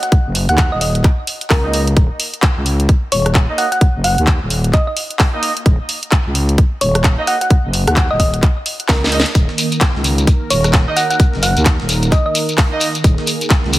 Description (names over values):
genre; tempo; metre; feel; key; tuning
bass house; 130 BPM; 4/4; swing 60% on 16ths; Eb minor; A4 = 440 Hz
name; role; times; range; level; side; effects
thumb-piano-like synth pluck; melody; 0.0-12.3 s; Bb4 to Gb5; -20 LUFS; equal; chorus, digital delay
garage drum kit; drums; 0.0-13.8 s; handclaps, hi-hat, rim click, snare drum; -19 LUFS; equal; small room ambience
electronic kick drum; drums; 0.1-13.6 s; none; -13 LUFS; equal; small room ambience
growling FM bass; bass; 0.3-13.8 s; Eb1 to Eb2; -17 LUFS; equal; overdrive, sidechain pumping
warm horn section; stabs; 1.6-12.9 s; Bb3 to Eb5; -24 LUFS; right 2 dB; sidechain pumping, low-pass filter, digital delay
sweeping resonant pad; sustained chords; 9.3-13.8 s; Eb3 to Bb4; -22 LUFS; right 2 dB; chorus, sidechain pumping
breakbeat sampler-style drum kit; drums; 9.3-13.8 s; hi-hat, snare drum; -29 LUFS; left 1 dB; none
shekere; percussion; 9.3-13.8 s; none; -22 LUFS; left 2 dB; none
room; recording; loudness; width
digital ambience; heavily compressed radio sound; -12 LUFS; side -16 dB against mid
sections
0.0-13.8 A section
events
filter sweep on horn section 0.0-13.8; drum fill 8.9-9.4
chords
0.0 Eb5